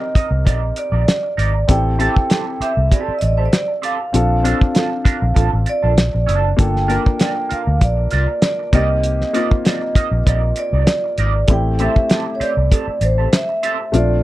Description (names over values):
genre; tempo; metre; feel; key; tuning
lush 1970s-style soul; 98 BPM; 4/4; swing 54% on 16ths; unclear; A4 = 441 Hz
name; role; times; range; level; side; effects
vibraphone with medium mallets; melody; 0.0-14.2 s; C5 to G5; -21 LUFS; right 2 dB; none
dark grand piano; accompaniment; 0.0-14.2 s; A3 to Bb4; -24 LUFS; left 4 dB; none
electric guitar at the edge of break-up; riff; 0.0-13.8 s; C4 to F5; -25 LUFS; right 6 dB; wah
vintage muted fingered electric bass; bass; 0.2-14.2 s; F#1 to D2; -17 LUFS; equal; none
cloth-damped thuddy drum kit; drums; 0.2-14.1 s; hi-hat, kick drum, snare drum; -15 LUFS; equal; none
room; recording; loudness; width
little or no reverb; dry, close 1970s-style studio recording; -14 LUFS; side -16 dB against mid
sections
0.0-14.2 A section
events
none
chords
0.0 Cm9; 1.7 Am7; 4.1 Bbmaj7; 6.6 Gm7; 8.7 Cm9; 11.5 Am7